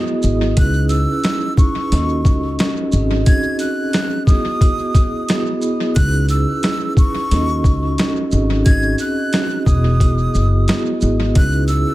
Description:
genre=hip hop, boom-bap hip-hop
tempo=89 BPM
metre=4/4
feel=swing 56% on 16ths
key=C# minor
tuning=A4 = 440 Hz
part: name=breathy jazz flute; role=melody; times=0.0-11.9 s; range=C#6 to G#6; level=-24 LUFS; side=equal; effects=tape echo
part: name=vibraphone with soft mallets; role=accompaniment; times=0.0-11.9 s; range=B3 to D#5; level=-20 LUFS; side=right 1 dB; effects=cassette tape, tape echo
part: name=upright bass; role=bass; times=0.2-11.8 s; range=E1 to D#2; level=-17 LUFS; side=equal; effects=none
part: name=boom bap sampler-style drum kit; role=drums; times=0.2-11.9 s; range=hi-hat, kick drum, shaker, snare drum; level=-16 LUFS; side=equal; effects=tape echo
room=little or no reverb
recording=echo-heavy mix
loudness=-14 LUFS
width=side -17 dB against mid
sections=0.0-11.9 A section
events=none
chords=0.0 Emaj7; 0.6 C#m7; 1.9 D#m7b5; 2.9 G#7sus4; 4.3 Emaj7; 6.0 C#m7; 7.3 D#m7b5; 8.3 G#7sus4; 9.7 Emaj7; 11.4 C#m7

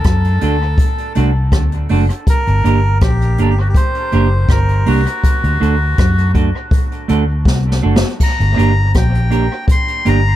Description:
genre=roots reggae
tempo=81 BPM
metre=4/4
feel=straight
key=G harmonic minor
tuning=A4 = 440 Hz
part: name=melodica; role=melody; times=0.0-10.4 s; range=F#4 to C6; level=-21 LUFS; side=left 1 dB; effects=dub echo
part: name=vintage muted fingered electric bass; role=bass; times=0.0-10.4 s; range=F#1 to F#2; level=-14 LUFS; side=equal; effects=none
part: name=jazz brush drum kit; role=drums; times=0.0-10.2 s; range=crash cymbal, hi-hat, kick drum, rim click, snare drum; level=-15 LUFS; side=equal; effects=dub echo
part: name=semi-hollow electric guitar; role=accompaniment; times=0.4-10.2 s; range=A3 to Bb4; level=-20 LUFS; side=right 6 dB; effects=dub echo
room=little or no reverb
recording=echo-heavy mix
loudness=-12 LUFS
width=side -13 dB against mid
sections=0.0-8.2 A section; 8.2-10.4 A section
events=drum fill 7.5-8.2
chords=0.0 D; 2.3 Gm; 5.2 D; 8.2 Gm

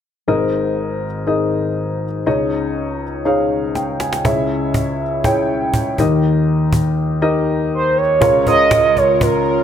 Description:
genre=piano-driven pop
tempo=121 BPM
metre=4/4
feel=straight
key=unclear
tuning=A4 = 440 Hz
part: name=dark baby grand piano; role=accompaniment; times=0.3-9.6 s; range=Ab1 to Ab5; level=-16 LUFS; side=left 1 dB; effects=none
part: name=cajon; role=drums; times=3.8-9.5 s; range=none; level=-20 LUFS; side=right 1 dB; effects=none
part: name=mellow horn-like synth lead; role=melody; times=7.7-9.6 s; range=Bb4 to Eb5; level=-13 LUFS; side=right 4 dB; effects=chorus
part: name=airy breathy pad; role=sustained chords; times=8.5-9.6 s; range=Db3 to Bb4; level=-22 LUFS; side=left 1 dB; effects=chorus
room=wet large studio reverb, RT60 1.0 s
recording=none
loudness=-14 LUFS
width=side -9 dB against mid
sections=0.3-8.2 A section; 8.2-9.6 B section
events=drum fill 3.8-4.2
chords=0.3 Absus2; 2.3 Dbsus2; 4.2 Dbm; 6.0 Eb; 8.2 Db6

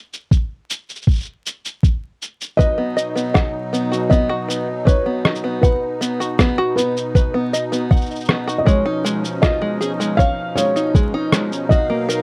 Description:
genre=folktronica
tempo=79 BPM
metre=4/4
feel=straight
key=B lydian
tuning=A4 = 440 Hz
part: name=electronic shaker and rim click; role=drums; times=0.1-12.2 s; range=none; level=-25 LUFS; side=equal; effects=none
part: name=electronic kick drum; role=drums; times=0.3-11.9 s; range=none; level=-17 LUFS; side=equal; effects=none
part: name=felt-muted upright piano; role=melody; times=2.6-12.2 s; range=B4 to E#5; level=-24 LUFS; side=equal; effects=tape echo
part: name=musette accordion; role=sustained chords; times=2.6-12.2 s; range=B2 to E#5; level=-28 LUFS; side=equal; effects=none
part: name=open-back banjo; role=arpeggios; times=2.6-12.2 s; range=G#3 to F#5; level=-24 LUFS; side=equal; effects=none
room=little or no reverb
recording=dry, close 1970s-style studio recording, vinyl crackle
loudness=-19 LUFS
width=mono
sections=0.0-12.2 A section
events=none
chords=0.0 N.C.; 2.6 B; 8.7 C#add9/B; 11.7 D#madd9/B

